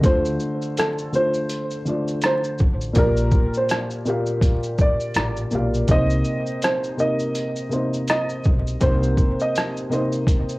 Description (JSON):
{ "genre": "lo-fi hip hop", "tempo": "82 BPM", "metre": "4/4", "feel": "swing 60% on 16ths", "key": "C dorian", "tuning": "A4 = 440 Hz", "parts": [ { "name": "felt-muted upright piano", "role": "accompaniment", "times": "0.0-10.6 s", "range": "Bb2 to F5", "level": "-24 LUFS", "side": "equal", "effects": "cassette tape" }, { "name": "upright bass", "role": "bass", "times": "0.0-9.1 s", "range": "A1 to D2", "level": "-24 LUFS", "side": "equal", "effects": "none" }, { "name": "trip hop sampler-style drum kit", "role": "drums", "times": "0.0-10.6 s", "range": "hi-hat, kick drum, rim click, shaker", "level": "-21 LUFS", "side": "equal", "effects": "overdrive" }, { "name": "warm upright piano", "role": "melody", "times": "0.1-9.7 s", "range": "A4 to Eb5", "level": "-25 LUFS", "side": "right 1 dB", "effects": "cassette tape, tape echo" } ], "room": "little or no reverb", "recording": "home recording on cassette, vinyl crackle, faint mains hum", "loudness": "-19 LUFS", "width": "side -21 dB against mid", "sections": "0.0-10.6 A section", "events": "none", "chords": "0.0 Dm7; 3.0 Bb6; 5.9 Cm7", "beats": "| 0.04 0.77 1.50 2.23 | 2.96 3.70 4.43 5.16 | 5.89 6.62 7.35 8.09 | 8.82 9.55 10.28" }